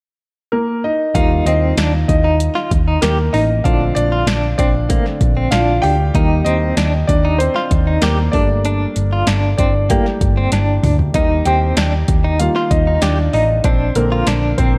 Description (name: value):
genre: piano-driven pop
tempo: 96 BPM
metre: 4/4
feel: straight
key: unclear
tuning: A4 = 440 Hz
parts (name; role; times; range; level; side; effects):
- warm grand piano; accompaniment; 0.5-14.8 s; D3 to G5; -21 LUFS; equal; none
- hollow-body short-scale picked electric bass; bass; 1.1-14.8 s; G1 to Eb2; -19 LUFS; equal; none
- deep house drum kit; drums; 1.1-14.7 s; hi-hat, kick drum, snare drum, toms; -21 LUFS; equal; overdrive
- direct-recorded clean electric guitar; riff; 1.2-14.7 s; Bb3 to G4; -24 LUFS; equal; tremolo
room: light reverb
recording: dark, warm production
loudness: -16 LUFS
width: mono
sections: 0.0-1.2 A section; 1.2-14.8 B section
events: grand piano solo 1.2-14.8; drum fill 10.5-11.1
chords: 0.0 Eb5; 1.2 Eb; 3.7 Bbmaj7; 6.2 Eb; 8.3 Gmadd9; 11.1 Eb; 13.6 Bbmaj7